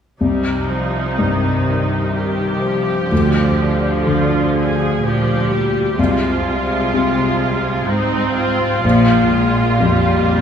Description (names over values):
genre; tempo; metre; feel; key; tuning
cinematic, emotional film score for orchestra; 63 BPM; 3/4; rubato; C minor; A4 = 438 Hz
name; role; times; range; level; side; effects
felt-muted upright piano; accompaniment; 0.2-10.4 s; Bb1 to D3; -18 LUFS; left 2 dB; none
rich symphonic viola section; accompaniment; 0.2-10.4 s; Eb3 to Ab4; -18 LUFS; right 1 dB; none
rich symphonic cello section; bass; 0.2-10.4 s; Ab2 to D3; -21 LUFS; right 2 dB; none
room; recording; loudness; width
wet scoring stage reverb, RT60 1.6 s; recorded in a church or concert hall; -14 LUFS; side -8 dB against mid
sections
0.2-10.4 A section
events
none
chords
0.2 Cm; 3.1 Bb/D; 6.0 Fm/C; 8.8 Bb5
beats
| 0.21 1.19 2.15 | 3.11 4.07 5.03 | 5.98 6.93 7.88 | 8.84 9.80